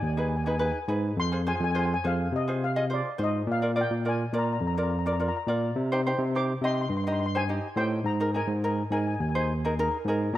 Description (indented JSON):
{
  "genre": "calypso",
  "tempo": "105 BPM",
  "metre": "4/4",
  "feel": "straight",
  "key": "unclear",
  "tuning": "A4 = 440 Hz",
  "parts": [
    { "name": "steel pan", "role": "melody", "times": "0.0-10.4 s", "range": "D5 to D6", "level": "-33 LUFS", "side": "left 3 dB", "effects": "tape echo" },
    { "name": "overdriven tine electric piano", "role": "bass", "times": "0.0-10.4 s", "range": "Eb2 to C3", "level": "-28 LUFS", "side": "equal", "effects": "auto-pan" },
    { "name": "ukulele", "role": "accompaniment", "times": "0.2-10.3 s", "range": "Eb4 to Eb5", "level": "-30 LUFS", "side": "equal", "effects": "none" }
  ],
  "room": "light reverb, studio reverb",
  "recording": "rough home demo mix",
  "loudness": "-25 LUFS",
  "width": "side -14 dB against mid",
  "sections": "0.0-10.4 A section",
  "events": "none",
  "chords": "0.0 Abm; 1.2 Fm; 3.5 Bb; 5.8 Cm; 8.1 Absus2"
}